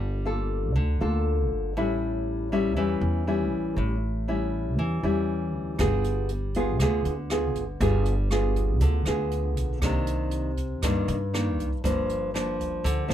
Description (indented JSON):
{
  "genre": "bossa nova",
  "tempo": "119 BPM",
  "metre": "4/4",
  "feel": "straight",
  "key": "unclear",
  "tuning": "A4 = 440 Hz",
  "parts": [
    { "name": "nylon-string guitar", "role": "accompaniment", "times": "0.0-13.1 s", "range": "G2 to A4", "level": "-27 LUFS", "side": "left 1 dB", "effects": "none" },
    { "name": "upright bass", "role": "bass", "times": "0.0-13.1 s", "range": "G1 to G2", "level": "-27 LUFS", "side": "equal", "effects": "none" },
    { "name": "jazz brush drum kit", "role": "drums", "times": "5.8-13.1 s", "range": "hi-hat, kick drum, rim click", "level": "-31 LUFS", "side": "right 1 dB", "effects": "none" }
  ],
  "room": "little or no reverb",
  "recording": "none",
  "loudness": "-24 LUFS",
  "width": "side -11 dB against mid",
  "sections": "0.0-13.1 A section",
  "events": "none",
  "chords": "0.0 Gm9; 1.8 A7; 5.8 G7b9; 9.8 Cm9; 11.8 Gm7",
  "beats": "0.25 0.76 1.26 | 1.76 2.27 2.77 3.27 | 3.78 4.28 4.79 5.29 | 5.79 6.30 6.80 7.30 | 7.81 8.31 8.82 9.32 | 9.82 10.33 10.83 11.34 | 11.84 12.35 12.85"
}